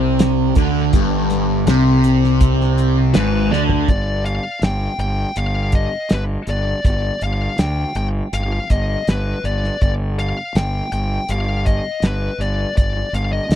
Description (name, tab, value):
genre	psychedelic rock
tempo	81 BPM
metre	4/4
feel	straight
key	G phrygian dominant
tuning	A4 = 440 Hz
part	fuzz guitar	riff	0.0-3.9 s	G2 to D3	-15 LUFS	equal	distortion, phaser
part	fuzz fingered electric bass	bass	0.0-13.6 s	G1 to D2	-20 LUFS	equal	overdrive
part	cloth-damped thuddy drum kit	drums	0.2-13.6 s	hi-hat, kick drum, snare drum, toms	-16 LUFS	equal	none
part	fuzz lead guitar	melody	3.1-13.6 s	B4 to G5	-24 LUFS	left 3 dB	distortion, tape echo
room	little or no reverb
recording	dry, close 1970s-style studio recording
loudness	-16 LUFS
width	side -10 dB against mid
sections	0.0-3.9 A section; 3.9-13.6 B section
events	drum fill 3.5-3.9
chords	0.0 G5